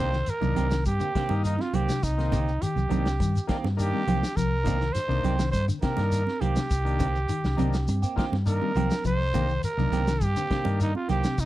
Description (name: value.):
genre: afrobeat.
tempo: 103 BPM.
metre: 4/4.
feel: straight.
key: C minor.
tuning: A4 = 440 Hz.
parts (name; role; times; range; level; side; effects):
growling trumpet; melody; 0.0-11.5 s; Eb4 to C5; -30 LUFS; right 2 dB; none.
overdriven combo organ; accompaniment; 0.0-10.9 s; Eb3 to F4; -34 LUFS; left 6 dB; none.
clean electric guitar; arpeggios; 0.0-11.4 s; C3 to G3; -32 LUFS; left 5 dB; phaser.
semi-hollow electric guitar; stabs; 0.0-11.3 s; Eb3 to G4; -35 LUFS; right 6 dB; none.
hollow-body short-scale fingered electric bass; bass; 0.0-11.5 s; C2 to G2; -26 LUFS; equal; none.
warm soul drum kit; drums; 0.1-11.5 s; hi-hat, kick drum, snare drum; -31 LUFS; equal; none.
shekere; percussion; 0.1-11.5 s; none; -33 LUFS; left 1 dB; none.
congas; percussion; 0.4-11.4 s; none; -32 LUFS; right 6 dB; none.
room: studio reverb.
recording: none.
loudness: -23 LUFS.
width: side -15 dB against mid.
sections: 0.0-11.5 A section.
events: none.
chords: 0.0 Cm7.